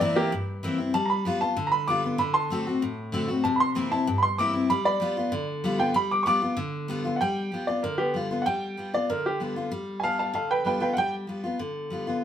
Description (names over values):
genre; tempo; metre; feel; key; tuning
rock; 192 BPM; 4/4; straight; G mixolydian; A4 = 440 Hz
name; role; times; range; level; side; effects
clear upright piano; melody; 0.0-11.1 s; Bb3 to D6; -25 LUFS; right 1 dB; none
picked steel-string acoustic guitar; accompaniment; 0.0-12.2 s; G2 to F#4; -27 LUFS; left 2 dB; none
room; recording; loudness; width
moderate studio reverb, RT60 0.9 s; band playing live in one room; -24 LUFS; side -9 dB against mid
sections
0.0-7.2 A section; 7.2-12.2 B section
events
upright piano solo 0.0-7.2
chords
0.0 C7; 0.9 G7; 2.2 D7; 3.4 C7; 4.7 G7